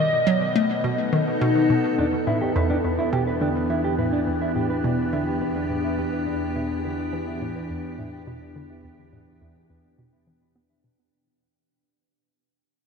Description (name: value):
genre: ambient, sequencer-driven space music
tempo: 105 BPM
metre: 4/4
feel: straight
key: E minor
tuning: A4 = 442 Hz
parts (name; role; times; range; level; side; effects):
- lightly driven lead guitar; melody; 0.0-1.4 s; Eb5; -27 LUFS; equal; tape echo
- evolving wavetable pad; sustained chords; 0.1-11.1 s; B2 to A4; -25 LUFS; left 1 dB; chorus, built-in reverb
- hollow square pluck; riff; 0.0-11.0 s; E2 to B3; -26 LUFS; equal; chorus, tape echo
- mellow electric guitar; arpeggios; 2.0-11.1 s; D4 to E5; -30 LUFS; right 3 dB; auto-pan, tape echo
- fat analog bass; bass; 2.0-11.1 s; E2; -34 LUFS; right 1 dB; none
room: wet huge ambient reverb, RT60 7.7 s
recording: none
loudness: -21 LUFS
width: side -5 dB against mid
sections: 0.0-2.0 A section; 2.0-11.1 B section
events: fade-out on clean electric guitar 2.0-11.1; fade-out 2.0-11.1; filter sweep on synth arpeggio sound 2.0-11.1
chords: 0.0 B7; 2.0 Em7